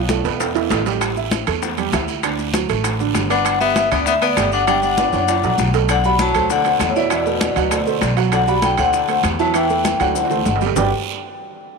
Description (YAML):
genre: Afro-Cuban jazz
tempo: 197 BPM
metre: 4/4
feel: straight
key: G major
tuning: A4 = 440 Hz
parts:
  - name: warm upright piano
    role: accompaniment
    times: 0.0-10.9 s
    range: D3 to G5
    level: -23 LUFS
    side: right 13 dB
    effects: none
  - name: upright bass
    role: bass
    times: 0.0-10.9 s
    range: F#1 to E2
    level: -24 LUFS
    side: equal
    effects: none
  - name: bongos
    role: percussion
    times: 0.1-10.8 s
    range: none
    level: -28 LUFS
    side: left 12 dB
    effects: none
  - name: congas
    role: percussion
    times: 0.1-10.8 s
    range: none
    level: -27 LUFS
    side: left 2 dB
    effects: none
  - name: guiro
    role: percussion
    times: 0.1-10.8 s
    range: none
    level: -31 LUFS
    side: right 15 dB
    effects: none
  - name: maracas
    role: percussion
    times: 0.1-10.8 s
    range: none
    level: -33 LUFS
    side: left 16 dB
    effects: none
  - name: timbales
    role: percussion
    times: 0.1-10.8 s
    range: none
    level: -26 LUFS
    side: right 14 dB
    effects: none
  - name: vibraphone with medium hard mallets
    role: melody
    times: 3.3-10.9 s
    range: C#5 to B5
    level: -20 LUFS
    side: left 2 dB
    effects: none
  - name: breathy tenor saxophone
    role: second line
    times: 3.3-10.9 s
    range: A2 to D4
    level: -23 LUFS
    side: left 11 dB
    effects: none
room: moderate plate reverb, RT60 3.2 s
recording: 1960s-style stereo with parts hard left and right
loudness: -15 LUFS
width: side -4 dB against mid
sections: 0.0-5.9 A section; 5.9-10.8 B section; 10.8-11.8 C section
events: drum fill 0.0-1.0, 5.0-5.9, 9.8-10.8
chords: 0.4 E5; 1.0 A7sus4; 2.2 D6; 3.5 Gmaj7; 5.3 F#; 5.9 Bm7; 6.5 D9; 7.1 E9sus4; 7.7 Bm7; 8.9 D9; 9.5 E9sus4; 10.2 D7; 10.8 Gmaj7